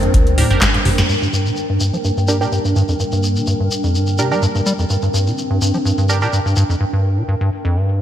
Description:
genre	acid house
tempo	126 BPM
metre	4/4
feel	swing 54% on 16ths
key	G minor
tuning	A4 = 440 Hz
part	dark analog pad	sustained chords	0.0-6.8 s	G3 to C5	-26 LUFS	equal	chorus, sidechain pumping
part	acid bass, square	riff	0.0-8.0 s	F2 to G3	-17 LUFS	equal	tube saturation, cassette tape, sidechain pumping
part	band-passed chord stab	stabs	0.0-6.8 s	D4 to Bb4	-23 LUFS	right 3 dB	chorus, cassette tape, ping-pong delay
part	round analog bass	bass	0.0-1.0 s	G1 to D2	-19 LUFS	equal	sidechain pumping
part	booming analog drum machine	drums	0.0-1.2 s	crash cymbal, handclaps, hi-hat, snare drum, toms	-19 LUFS	equal	low-pass filter on hats, low-pass filter on snare, low-pass filter on toms, low-pass filter on cymbals, gated reverb
part	granular cloud pad	texture	0.0-6.8 s	D4 to G5	-24 LUFS	equal	built-in reverb, wide subtle chorus, sidechain pumping
part	electronic kick drum	drums	0.1-0.7 s	none	-15 LUFS	equal	none
part	cloth-damped thuddy drum kit	drums	0.4-1.0 s	hi-hat, snare drum	-33 LUFS	left 1 dB	none
part	shekere	percussion	1.1-6.8 s	none	-26 LUFS	left 2 dB	none
room	moderate lush hall reverb, RT60 2.5 s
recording	bright 1980s-style digital production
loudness	-14 LUFS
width	side -11 dB against mid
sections	0.0-1.1 A section; 1.1-8.0 B section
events	drum fill 0.6-1.1; band accent 1.0; filter sweep on synth stab 1.1-8.0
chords	0.0 Gm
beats	0.14 0.62 | 1.09 1.57 2.04 2.52 | 3.00 3.47 3.95 4.43 | 4.90 5.38 5.85 6.33 | 6.81 7.28 7.76

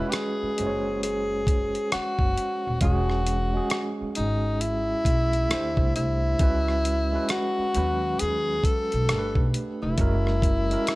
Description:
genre	R&B, neo-soul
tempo	67 BPM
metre	4/4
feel	swing 62% on 16ths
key	unclear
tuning	A4 = 441 Hz
part	breathy tenor saxophone	melody	0.0-11.0 s	D#4 to A4	-27 LUFS	left 1 dB	none
part	overdriven tine electric piano	accompaniment	0.0-11.0 s	F#3 to C#5	-30 LUFS	right 2 dB	fast tremolo
part	dusty soul sampler-style drum kit	drums	0.1-11.0 s	hi-hat, kick drum, rim click	-25 LUFS	equal	none
part	upright bass	bass	0.4-10.7 s	D#1 to D#2	-27 LUFS	equal	none
room	light reverb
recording	none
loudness	-22 LUFS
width	side -20 dB against mid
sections	0.0-11.0 A section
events	none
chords	0.0 Eadd9; 5.5 D9sus4; 6.4 C#m11; 9.1 G9; 10.0 F#9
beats	0.13 1.02 1.92 | 2.81 3.71 4.60 5.50 | 6.39 7.29 8.19 9.08 | 9.98 10.87

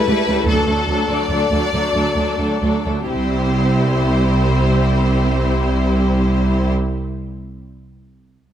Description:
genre	cinematic, heroic adventure film score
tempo	83-104 BPM (dotted quarters)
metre	12/8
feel	straight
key	C lydian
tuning	A4 = 437 Hz
part	clear symphonic violin section	melody	0.0-6.7 s	A4 to D5	-23 LUFS	left 3 dB	none
part	warm symphonic violin section	second line	0.0-6.7 s	D4 to A4	-24 LUFS	left 4 dB	none
part	warm symphonic viola section	accompaniment	0.0-6.7 s	F#3 to C4	-22 LUFS	equal	none
part	rich symphonic cello section	bass	0.1-6.7 s	C2 to D2	-20 LUFS	right 2 dB	none
part	rich studio double bass section	bass	0.5-6.7 s	C2 to D2	-20 LUFS	right 2 dB	none
room	moderate scoring stage reverb, RT60 1.8 s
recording	close, detailed microphones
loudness	-15 LUFS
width	side -10 dB against mid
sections	0.0-3.1 A section; 3.1-6.0 B section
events	slowing down 0.0-3.1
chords	0.5 D; 3.1 C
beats	| 0.48 1.09 1.72 2.39 | 3.09 3.81 4.52 5.24

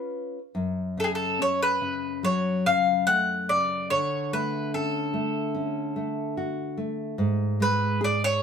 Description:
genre	fado-style ballad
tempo	72 BPM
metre	4/4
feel	rubato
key	F# harmonic minor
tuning	A4 = 440 Hz
part	mandolin	melody	0.0-8.4 s	G#4 to F#5	-25 LUFS	left 1 dB	none
part	nylon-string guitar	accompaniment	0.0-8.4 s	F#2 to B4	-28 LUFS	equal	none
room	moderate studio reverb, RT60 0.7 s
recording	band playing live in one room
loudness	-24 LUFS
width	side -7 dB against mid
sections	0.6-8.4 A section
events	none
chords	0.0 C#7; 0.6 F#m; 3.9 Dmaj7; 7.2 G#m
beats	| 0.56 1.40 2.24 3.09 | 3.92 4.75 5.57 6.38 | 7.19 8.02

